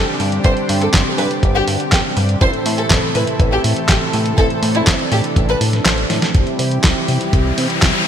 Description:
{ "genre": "italo disco", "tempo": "122 BPM", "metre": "4/4", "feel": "straight", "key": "C major", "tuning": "A4 = 440 Hz", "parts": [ { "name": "dark chamber violin section", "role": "melody", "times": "0.0-5.9 s", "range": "E4 to C5", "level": "-21 LUFS", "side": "left 1 dB", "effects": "ping-pong delay" }, { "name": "lush unison pad", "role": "sustained chords", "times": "0.0-8.1 s", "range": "C3 to A4", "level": "-22 LUFS", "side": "equal", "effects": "chorus" }, { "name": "mellow synth brass", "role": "stabs", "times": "0.0-8.1 s", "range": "A2 to C5", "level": "-24 LUFS", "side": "right 2 dB", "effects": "chorus" }, { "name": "chorused synth bass", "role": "bass", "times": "0.0-7.9 s", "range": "G1 to C3", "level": "-20 LUFS", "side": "equal", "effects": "tube saturation" }, { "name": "clean 12-bit digital drum machine", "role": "drums", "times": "0.2-7.9 s", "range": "handclaps, hi-hat, snare drum", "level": "-19 LUFS", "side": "equal", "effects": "gated reverb" }, { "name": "electronic kick drum", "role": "drums", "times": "0.4-7.9 s", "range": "none", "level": "-15 LUFS", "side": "equal", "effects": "none" }, { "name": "riser", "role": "sound effects", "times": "7.2-8.1 s", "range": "none", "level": "-23 LUFS", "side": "left 4 dB", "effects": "none" } ], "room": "moderate lush hall reverb, RT60 2.0 s", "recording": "bright 1980s-style digital production", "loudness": "-13 LUFS", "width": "side -9 dB against mid", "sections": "0.0-6.3 A section; 6.3-8.1 B section", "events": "kick drops out 5.9-6.3; drum fill 6.1; riser 7.2-8.1", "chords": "0.0 Gsus4; 2.4 Am; 6.3 C" }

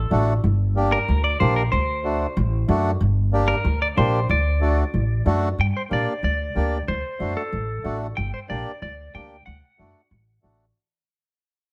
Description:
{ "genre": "latin", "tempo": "186 BPM", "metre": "4/4", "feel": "straight", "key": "G harmonic minor", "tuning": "A4 = 439 Hz", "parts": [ { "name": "clean electric guitar", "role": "melody", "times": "0.0-10.4 s", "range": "A4 to G5", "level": "-29 LUFS", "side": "equal", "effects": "spring reverb" }, { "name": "upright bass", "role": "bass", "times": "0.0-10.7 s", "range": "G1 to Bb2", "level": "-24 LUFS", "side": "equal", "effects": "none" }, { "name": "accordion", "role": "accompaniment", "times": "0.1-10.7 s", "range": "A3 to G4", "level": "-27 LUFS", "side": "equal", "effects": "none" } ], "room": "light reverb", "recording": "none", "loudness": "-22 LUFS", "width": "mono", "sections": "0.0-5.6 A section; 5.6-10.8 B section", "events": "fade-out 5.6-10.8", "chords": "0.4 Gm; 1.7 D7; 3.0 Gm; 4.3 D; 5.6 Gm; 6.9 D7; 8.2 Gm; 9.5 D" }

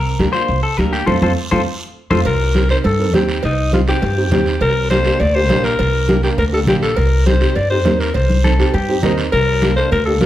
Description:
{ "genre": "latin, cumbia", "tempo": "204 BPM", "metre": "4/4", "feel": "straight", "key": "C dorian", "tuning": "A4 = 440 Hz", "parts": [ { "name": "semi-hollow electric guitar", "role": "second line", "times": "0.0-2.2, 8.4-9.2 s", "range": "Eb4 to C5", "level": "-20 LUFS", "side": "left 3 dB", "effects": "none" }, { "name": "upright bass", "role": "bass", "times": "0.0-10.3 s", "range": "Bb1 to G2", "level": "-17 LUFS", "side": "equal", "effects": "none" }, { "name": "dark upright piano", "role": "accompaniment", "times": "0.2-10.3 s", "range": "A3 to Bb4", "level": "-21 LUFS", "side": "right 2 dB", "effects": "none" }, { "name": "congas", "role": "percussion", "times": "0.2-10.3 s", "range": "none", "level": "-20 LUFS", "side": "left 1 dB", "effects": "none" }, { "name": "guiro", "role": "percussion", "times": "0.2-10.3 s", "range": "none", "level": "-29 LUFS", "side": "right 3 dB", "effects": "none" }, { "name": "breathy alto saxophone", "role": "melody", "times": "2.3-10.3 s", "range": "Eb4 to D5", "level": "-18 LUFS", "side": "left 2 dB", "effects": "none" }, { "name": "cowbell and timbales", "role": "percussion", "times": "2.3-10.3 s", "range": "none", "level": "-25 LUFS", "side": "right 4 dB", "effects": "none" } ], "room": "moderate large studio reverb, RT60 0.9 s", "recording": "heard from further back in the room", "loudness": "-13 LUFS", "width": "side -13 dB against mid", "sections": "0.0-2.3 A section; 2.3-10.3 B section", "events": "clean electric guitar solo 0.0-2.3; band accent 1.1-2.3; drum fill 1.4-2.3; upright piano fill 1.7-2.3", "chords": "0.0 Gm/C; 1.1 F; 2.3 Cm; 4.6 Gm; 7.0 Cm; 9.3 Gm/C (rootless)" }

